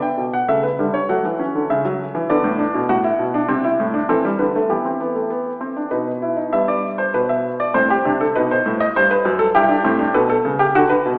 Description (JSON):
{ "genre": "classical, baroque-style 3-part fugue for grand piano", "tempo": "100 BPM", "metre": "3/4", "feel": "straight", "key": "E minor", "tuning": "A4 = 445 Hz", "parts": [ { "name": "warm baby grand piano", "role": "solo", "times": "0.0-11.2 s", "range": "F#2 to G5", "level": "-19 LUFS", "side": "equal", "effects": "none" } ], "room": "wet recital hall reverb, RT60 1.5 s", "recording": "recorded in a church or concert hall, AM radio sound", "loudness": "-19 LUFS", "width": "mono", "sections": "0.0-6.5 A section; 6.5-11.2 B section", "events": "none", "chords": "0.5 C#dim; 1.1 F#m7; 2.3 Bm; 2.9 F#m7b5/A; 4.7 Em; 5.9 B; 6.5 Em/G; 7.7 Am; 8.3 B7; 9.5 Em/G; 10.1 Bm" }